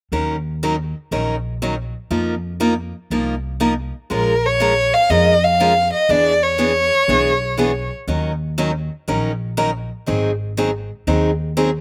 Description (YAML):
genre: acoustic string swing (jazz manouche)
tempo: 121 BPM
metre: 4/4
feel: swing 66% on 8ths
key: Bb minor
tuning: A4 = 438 Hz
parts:
  - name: picked steel-string acoustic guitar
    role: accompaniment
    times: 0.1-11.7 s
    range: Eb3 to Bb4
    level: -22 LUFS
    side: equal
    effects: none
  - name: upright bass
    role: bass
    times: 0.1-11.8 s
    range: Ab1 to F2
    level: -26 LUFS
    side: equal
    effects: none
  - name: warm violin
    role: melody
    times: 4.1-7.9 s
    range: Bb4 to F5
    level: -17 LUFS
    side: equal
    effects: slapback echo
room: little or no reverb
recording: recorded outdoors, with no room sound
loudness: -19 LUFS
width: mono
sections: 0.1-4.1 A section; 4.1-11.8 B section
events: none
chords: 0.1 Ebm7; 2.1 F7sus4; 4.1 Bbm7; 6.1 E7; 8.1 Ebm7; 10.1 Ab7